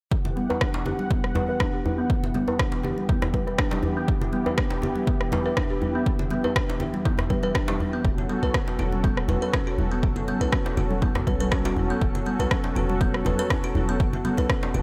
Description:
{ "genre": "afro house", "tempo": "121 BPM", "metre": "4/4", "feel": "swing 54% on 16ths", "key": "E dorian", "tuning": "A4 = 439 Hz", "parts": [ { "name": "warm analog pad", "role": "sustained chords", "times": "0.1-14.8 s", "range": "E3 to F#5", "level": "-34 LUFS", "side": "equal", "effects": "chorus, tremolo, sidechain pumping" }, { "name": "electronic kick drum", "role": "drums", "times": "0.1-14.6 s", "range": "none", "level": "-28 LUFS", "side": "equal", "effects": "overdrive, small room reverb" }, { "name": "kalimba", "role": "arpeggios", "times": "0.2-14.8 s", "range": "B3 to B4", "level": "-31 LUFS", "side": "equal", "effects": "sidechain pumping, low-pass filter, dub echo" }, { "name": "congas", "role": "percussion", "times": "0.3-14.8 s", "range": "none", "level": "-35 LUFS", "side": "equal", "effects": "none" }, { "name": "djembe", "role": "percussion", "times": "0.5-14.8 s", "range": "none", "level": "-34 LUFS", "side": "equal", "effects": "none" }, { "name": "electronic rim click", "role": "drums", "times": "0.6-14.6 s", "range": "none", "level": "-32 LUFS", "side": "equal", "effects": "overdrive, small room reverb" }, { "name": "warm 808-style bass", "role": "bass", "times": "8.0-14.8 s", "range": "E1 to B1", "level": "-30 LUFS", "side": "equal", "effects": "tube saturation, sidechain pumping" } ], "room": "light reverb, small room ambience", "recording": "none", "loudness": "-24 LUFS", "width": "mono", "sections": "0.1-14.8 A section", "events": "filter sweep on kalimba 0.1-14.8", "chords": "0.1 Em7; 8.0 F#m7/E" }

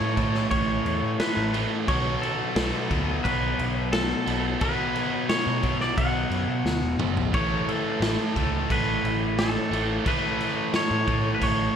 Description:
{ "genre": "quiet-loud alternative rock", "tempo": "88 BPM", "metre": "4/4", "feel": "straight", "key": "unclear", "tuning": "A4 = 440 Hz", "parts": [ { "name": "twangy electric guitar", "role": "melody", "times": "0.0-11.8 s", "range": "A4 to F#5", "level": "-29 LUFS", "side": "equal", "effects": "spring reverb, slapback echo" }, { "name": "cranked stack guitar", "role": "riff", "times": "0.0-11.8 s", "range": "A2 to B3", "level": "-30 LUFS", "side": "left 11 dB", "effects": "overdrive" }, { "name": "distorted electric guitar", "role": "riff", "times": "0.0-11.8 s", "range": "A2 to B3", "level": "-30 LUFS", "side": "right 9 dB", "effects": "distortion" }, { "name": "overdriven picked electric bass", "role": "bass", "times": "0.0-11.7 s", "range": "E1 to B2", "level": "-29 LUFS", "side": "equal", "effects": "none" }, { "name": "raw garage drum kit", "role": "drums", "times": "0.2-11.6 s", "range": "crash cymbal, kick drum, snare drum, toms", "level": "-28 LUFS", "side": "equal", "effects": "none" } ], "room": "light reverb, small room ambience", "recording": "none", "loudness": "-22 LUFS", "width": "side -8 dB against mid", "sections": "0.0-11.8 A section", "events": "drum fill 6.7-7.3", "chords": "0.0 Aadd9; 1.9 B5; 7.3 Aadd9" }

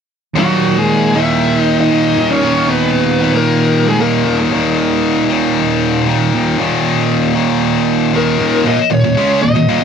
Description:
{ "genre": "metal", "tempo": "116 BPM", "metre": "4/4", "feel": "straight", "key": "unclear", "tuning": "A4 = 445 Hz", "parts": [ { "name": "distorted electric guitar", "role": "riff", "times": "0.3-9.8 s", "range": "Eb2 to Db4", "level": "-15 LUFS", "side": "right 6 dB", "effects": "distortion" }, { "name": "high-gain lead guitar", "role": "melody", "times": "0.4-4.4, 8.2-9.8 s", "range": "Gb4 to Fb5", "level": "-17 LUFS", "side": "left 1 dB", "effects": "distortion, tape echo" }, { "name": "high-gain lead guitar", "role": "second line", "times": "0.4-4.4 s", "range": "Gb3 to Fb4", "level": "-18 LUFS", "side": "right 1 dB", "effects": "distortion" }, { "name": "heavy high-gain guitar", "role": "riff", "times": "0.4-9.8 s", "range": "Eb2 to Db4", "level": "-16 LUFS", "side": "left 10 dB", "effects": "distortion" } ], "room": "light reverb", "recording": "dry, close 1970s-style studio recording", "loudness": "-11 LUFS", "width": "side -7 dB against mid", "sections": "0.4-8.6 A section; 8.6-9.8 B section", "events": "none", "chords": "0.4 Eb5" }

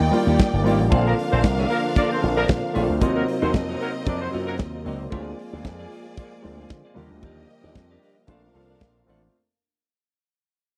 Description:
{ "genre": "disco", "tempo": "114 BPM", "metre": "4/4", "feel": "straight", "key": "Bb major", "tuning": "A4 = 441 Hz", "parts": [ { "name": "clear studio string section", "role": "second line", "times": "0.0-9.3 s", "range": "Bb3 to G5", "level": "-32 LUFS", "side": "equal", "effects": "none" }, { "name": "clean electric guitar", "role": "accompaniment", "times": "0.0-9.3 s", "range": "Bb3 to Eb5", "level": "-32 LUFS", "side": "equal", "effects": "none" }, { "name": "dark baby grand piano", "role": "accompaniment", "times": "0.0-9.4 s", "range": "D3 to A4", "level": "-29 LUFS", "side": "equal", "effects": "none" }, { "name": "percussive tonewheel organ", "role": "sustained chords", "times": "0.0-9.3 s", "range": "C3 to Eb5", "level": "-33 LUFS", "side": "equal", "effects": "chorus vibrato, slow rotary speaker" }, { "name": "slap bass with an envelope filter", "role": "bass", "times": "0.0-9.3 s", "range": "G1 to D3", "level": "-27 LUFS", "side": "equal", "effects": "none" }, { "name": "modern studio drum kit", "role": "drums", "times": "0.1-9.2 s", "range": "hi-hat, kick drum, snare drum", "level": "-23 LUFS", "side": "equal", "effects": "none" }, { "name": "mellow horn section", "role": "stabs", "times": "1.1-4.5 s", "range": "F3 to D5", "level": "-28 LUFS", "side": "equal", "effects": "none" } ], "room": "little or no reverb", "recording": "dry, close 1970s-style studio recording", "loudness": "-22 LUFS", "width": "mono", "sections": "0.0-9.3 A section", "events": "fade-out 0.0-9.3", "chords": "0.0 Ebmaj7; 0.9 Bbmaj7; 3.0 Ebm6; 5.1 Bb7/D; 7.0 Ebmaj7; 8.3 Bbmaj7" }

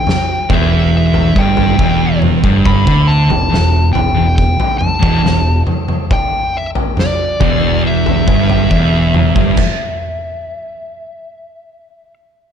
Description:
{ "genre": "stoner and doom metal", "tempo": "69 BPM", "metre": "4/4", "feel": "straight", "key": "E minor", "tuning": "A4 = 440 Hz", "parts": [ { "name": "fuzz lead guitar", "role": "melody", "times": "0.0-12.1 s", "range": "D5 to B5", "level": "-20 LUFS", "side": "left 1 dB", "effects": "distortion, ping-pong delay" }, { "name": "oversized low-tuned drum kit", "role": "drums", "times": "0.1-9.8 s", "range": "crash cymbal, kick drum, snare drum, toms", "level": "-16 LUFS", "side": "equal", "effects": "none" }, { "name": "thick fuzz guitar", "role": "riff", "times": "0.5-9.6 s", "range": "E2 to D3", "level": "-16 LUFS", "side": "left 6 dB", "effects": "distortion" }, { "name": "thick fuzz guitar", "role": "riff", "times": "0.5-9.6 s", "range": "E2 to D3", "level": "-16 LUFS", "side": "right 11 dB", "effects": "distortion" }, { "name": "growling fingered electric bass", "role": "bass", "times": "0.5-9.6 s", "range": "E1 to D2", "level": "-17 LUFS", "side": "equal", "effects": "overdrive" } ], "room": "light reverb, small room ambience", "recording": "dark, warm production", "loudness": "-10 LUFS", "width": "side -8 dB against mid", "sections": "0.0-12.5 A section", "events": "stop 9.6-12.5", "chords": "0.0 Em" }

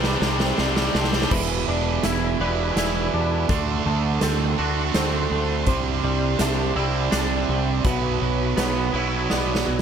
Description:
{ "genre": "post-rock", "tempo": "83 BPM", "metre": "3/4", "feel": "straight", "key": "E minor", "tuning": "A4 = 442 Hz", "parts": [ { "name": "bright studio string section", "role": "sustained chords", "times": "0.0-9.8 s", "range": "C4 to C6", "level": "-32 LUFS", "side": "equal", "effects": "none" }, { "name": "clean electric guitar", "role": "arpeggios", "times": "0.0-9.8 s", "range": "A4 to E5", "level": "-32 LUFS", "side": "right 2 dB", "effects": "analog chorus, tape echo" }, { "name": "twangy electric guitar", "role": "arpeggios", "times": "0.0-9.8 s", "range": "B2 to B4", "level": "-30 LUFS", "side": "left 5 dB", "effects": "ensemble chorus, tape echo" }, { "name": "distorted electric guitar", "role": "riff", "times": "0.0-9.8 s", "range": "E2 to D4", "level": "-25 LUFS", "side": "right 13 dB", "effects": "overdrive" }, { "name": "tight distorted guitar", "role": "riff", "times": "0.0-1.3 s", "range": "C4 to D4", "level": "-27 LUFS", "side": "left 12 dB", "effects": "distortion" }, { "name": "growling fingered electric bass", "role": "bass", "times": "0.0-9.8 s", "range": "E1 to E2", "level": "-25 LUFS", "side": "left 1 dB", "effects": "overdrive" }, { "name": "huge arena drum kit", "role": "drums", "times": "0.0-9.8 s", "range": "crash cymbal, hi-hat, kick drum, snare drum", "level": "-26 LUFS", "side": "equal", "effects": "none" } ], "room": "light reverb, small room ambience", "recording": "none", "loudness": "-20 LUFS", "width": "side -7 dB against mid", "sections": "0.0-1.3 A section; 1.3-9.8 B section", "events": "build-up 0.0-1.3; drum fill 0.0-1.3, 9.3-9.8", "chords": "0.0 Csus2; 1.3 Em7; 3.5 D7; 5.7 Cadd9; 7.9 Bsus4" }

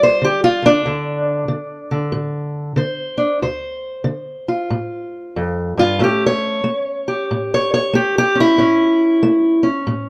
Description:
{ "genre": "acoustic country blues, solo or duo", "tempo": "93 BPM", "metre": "4/4", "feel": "swing 65% on 8ths", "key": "D minor", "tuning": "A4 = 440 Hz", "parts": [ { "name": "fingerpicked steel-string acoustic guitar", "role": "solo", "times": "0.0-10.1 s", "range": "D2 to C#5", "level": "-18 LUFS", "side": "equal", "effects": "none" } ], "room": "little or no reverb", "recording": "close, detailed microphones", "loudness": "-18 LUFS", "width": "mono", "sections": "0.0-10.1 A section", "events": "steel-string acoustic guitar solo 0.0-10.1", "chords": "0.0 G7(no3); 0.8 Dm7; 6.0 A7" }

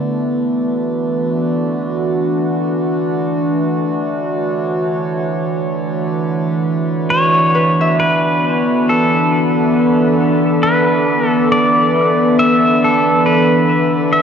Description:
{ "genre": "ambient", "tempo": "68 BPM", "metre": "4/4", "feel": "straight", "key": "D major", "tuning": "A4 = 436 Hz", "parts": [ { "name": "evolving wavetable pad", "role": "sustained chords", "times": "0.0-14.2 s", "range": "E3 to C#5", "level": "-15 LUFS", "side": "equal", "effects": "chorus, built-in reverb" }, { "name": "hand-pumped harmonium", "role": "drone", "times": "0.0-14.2 s", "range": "D3 to D4", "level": "-25 LUFS", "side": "equal", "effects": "none" }, { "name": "pedal steel guitar", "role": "melody", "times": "7.1-14.2 s", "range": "A4 to E5", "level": "-15 LUFS", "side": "left 1 dB", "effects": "diffuse ambient delay" }, { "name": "Celtic harp", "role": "arpeggios", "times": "7.5-9.6 s", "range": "B4 to E5", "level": "-24 LUFS", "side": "left 2 dB", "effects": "diffuse ambient delay" } ], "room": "wet lush hall reverb, RT60 2.8 s", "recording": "cassette tape", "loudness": "-13 LUFS", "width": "side -7 dB against mid", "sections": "0.0-14.2 A section", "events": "fade-in on harmonium 0.0-14.2; filter sweep on ambient pad 0.0-14.2", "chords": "0.0 D69; 3.6 A69; 7.1 D69" }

